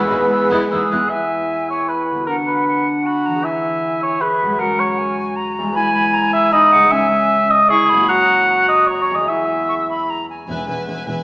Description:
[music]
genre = cinematic, heroic adventure film score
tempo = 154 BPM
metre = 3/4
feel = straight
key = E lydian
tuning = A4 = 439 Hz
[part]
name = warm symphonic violin section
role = melody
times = 0.0-0.9, 10.5-11.2 s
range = B3 to G#5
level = -31 LUFS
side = left 1 dB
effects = none
[part]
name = mellow clarinet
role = second line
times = 0.0-10.3 s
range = C#4 to G#4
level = -24 LUFS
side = equal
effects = none
[part]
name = mellow cor anglais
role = second line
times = 0.0-10.1 s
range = F#4 to G#5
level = -15 LUFS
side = equal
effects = none
[part]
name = silver concert flute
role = second line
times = 0.0-10.5 s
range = E5 to F#6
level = -23 LUFS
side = equal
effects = none
[part]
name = warm symphonic violin section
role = second line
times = 0.0-1.0, 10.5-11.2 s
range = A#3 to E5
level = -29 LUFS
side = equal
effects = none
[part]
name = warm symphonic viola section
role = accompaniment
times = 0.0-1.0, 10.5-11.2 s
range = E3 to B4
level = -28 LUFS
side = equal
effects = none
[part]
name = dark French horn section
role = sustained chords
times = 0.0-0.9 s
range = G#3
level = -28 LUFS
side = left 1 dB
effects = none
[part]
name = warm trombone section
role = sustained chords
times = 0.0-0.9 s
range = E3 to B3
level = -25 LUFS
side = right 1 dB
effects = none
[part]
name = concert harp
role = arpeggios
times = 0.0-11.2 s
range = E2 to E5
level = -26 LUFS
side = left 2 dB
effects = none
[part]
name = warm trumpet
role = stabs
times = 0.0-0.9 s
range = B4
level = -20 LUFS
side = equal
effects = none
[part]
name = warm symphonic cello section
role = bass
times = 0.0-0.9, 10.5-11.2 s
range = E2 to G#3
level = -27 LUFS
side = right 1 dB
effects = none
[part]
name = rich symphonic double bass section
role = bass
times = 0.1-1.0, 10.5-11.2 s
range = E1 to E2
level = -30 LUFS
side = right 1 dB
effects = none
[part]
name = timpani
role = percussion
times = 10.5-11.0 s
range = E2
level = -35 LUFS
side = equal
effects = none
[sound]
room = wet scoring stage reverb, RT60 1.7 s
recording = small speaker sound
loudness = -14 LUFS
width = side -23 dB against mid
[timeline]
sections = 0.0-1.1 A section; 1.1-10.5 B section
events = none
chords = 0.0 E; 2.3 Bm/D; 3.5 E; 4.6 F#add9; 5.8 E; 6.9 C#m; 8.1 F#; 9.3 E

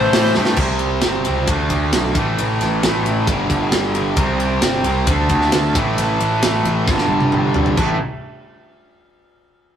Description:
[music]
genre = hard rock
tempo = 134 BPM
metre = 4/4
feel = straight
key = A minor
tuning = A4 = 440 Hz
[part]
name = overdriven tonewheel organ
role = sustained chords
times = 0.0-0.6, 4.2-8.0 s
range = G3 to E5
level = -29 LUFS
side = equal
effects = none
[part]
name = distorted electric guitar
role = riff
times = 0.0-0.6 s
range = A2 to A3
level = -26 LUFS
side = equal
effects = none
[part]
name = overdriven electric guitar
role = riff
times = 0.0-8.0 s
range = G2 to D4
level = -23 LUFS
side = left 3 dB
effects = none
[part]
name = overdriven electric guitar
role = riff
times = 0.0-8.0 s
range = G2 to D4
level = -21 LUFS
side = right 3 dB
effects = spring reverb
[part]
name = fuzz picked electric bass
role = bass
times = 0.0-8.0 s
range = G1 to A2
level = -21 LUFS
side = equal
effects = overdrive
[part]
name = tight metal drum kit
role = drums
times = 0.1-7.9 s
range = crash cymbal, hi-hat, kick drum, ride cymbal, snare drum, toms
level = -20 LUFS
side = equal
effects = none
[sound]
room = moderate studio reverb, RT60 0.6 s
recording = rough rehearsal-room recording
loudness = -15 LUFS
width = side -9 dB against mid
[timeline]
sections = 0.6-7.8 A section; 7.8-9.6 B section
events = drum fill 0.4, 6.9-7.8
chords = 0.0 Am; 0.6 C5; 1.5 D5; 2.2 A5; 3.3 G5; 4.2 C5; 5.1 D5; 5.8 A5; 6.9 G5; 7.8 A5

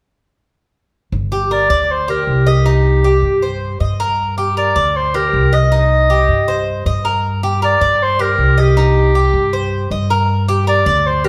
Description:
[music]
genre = latin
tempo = 157 BPM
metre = 4/4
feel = straight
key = G minor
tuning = A4 = 440 Hz
[part]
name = upright bass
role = bass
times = 1.1-11.3 s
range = G1 to G2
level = -18 LUFS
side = equal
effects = none
[part]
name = Cuban tres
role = arpeggios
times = 1.3-11.3 s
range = Eb4 to Eb5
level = -21 LUFS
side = equal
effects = none
[part]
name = warm clarinet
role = melody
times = 1.5-11.3 s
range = G4 to Eb5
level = -18 LUFS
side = equal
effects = none
[sound]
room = wet large studio reverb, RT60 1.3 s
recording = heard from further back in the room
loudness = -15 LUFS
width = mono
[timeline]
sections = 1.1-11.3 A section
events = none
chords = 1.1 Gm; 2.7 Cm; 4.2 Gm; 5.7 Cm; 7.2 Gm; 8.8 Cm; 10.3 Gm

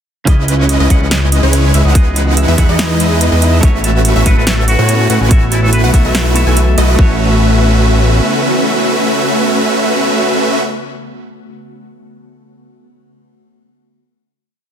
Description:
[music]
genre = future bass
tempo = 143 BPM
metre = 4/4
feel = half-time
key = A lydian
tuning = A4 = 440 Hz
[part]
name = semi-hollow electric guitar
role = accompaniment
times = 0.3-10.6 s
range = C#3 to F#5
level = -22 LUFS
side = right 3 dB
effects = sidechain pumping, ping-pong delay
[part]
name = ethereal airy pad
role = sustained chords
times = 0.3-10.6 s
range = C#3 to D#5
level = -22 LUFS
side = left 1 dB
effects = ensemble chorus, built-in reverb, sidechain pumping
[part]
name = concert harp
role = arpeggios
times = 0.3-9.4 s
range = F#4 to B5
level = -27 LUFS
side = equal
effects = none
[part]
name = wide unison pluck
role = arpeggios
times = 0.3-10.6 s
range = C#5 to G#5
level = -26 LUFS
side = left 1 dB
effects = sidechain pumping, ping-pong delay
[part]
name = supersaw chords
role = riff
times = 0.3-10.6 s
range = G#3 to G#5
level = -14 LUFS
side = right 1 dB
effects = sidechain pumping, ping-pong delay
[part]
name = fat analog bass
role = bass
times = 0.3-8.2 s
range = A1 to A2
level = -12 LUFS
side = equal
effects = sidechain pumping
[part]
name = big-room dance drum kit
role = drums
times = 0.3-6.9 s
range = hi-hat, snare drum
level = -17 LUFS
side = right 1 dB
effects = none
[part]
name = electronic kick drum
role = drums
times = 0.3-7.1 s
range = none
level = -10 LUFS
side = equal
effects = none
[part]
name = trumpet with straight mute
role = melody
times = 4.3-5.9 s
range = E4 to B4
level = -20 LUFS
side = equal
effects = sidechain pumping, ping-pong delay
[sound]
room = light reverb, digital ambience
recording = dense, heavily limited modern master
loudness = -9 LUFS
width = side -8 dB against mid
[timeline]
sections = 0.3-7.0 drop; 7.0-10.3 final chord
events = drop 0.3-7.0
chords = 0.3 C#m9; 3.6 A69; 5.3 B7sus4; 7.0 A69

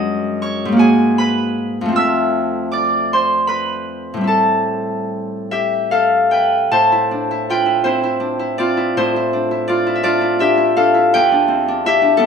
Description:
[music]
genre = classical, solo harp piece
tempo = 48-58 BPM (dotted quarters)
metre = 6/8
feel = rubato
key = A minor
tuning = A4 = 441 Hz
[part]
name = Celtic harp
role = solo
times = 0.0-12.3 s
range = E2 to E6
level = -14 LUFS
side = equal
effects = none
[sound]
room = little or no reverb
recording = close, detailed microphones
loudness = -14 LUFS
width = side -6 dB against mid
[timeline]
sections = 0.0-6.7 A section; 6.7-12.3 B section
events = none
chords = 0.0 F#sus2; 0.8 G#m9; 2.0 Fmaj7; 4.3 Am7; 6.7 Amadd9; 9.0 Dm9/A; 11.1 Em7

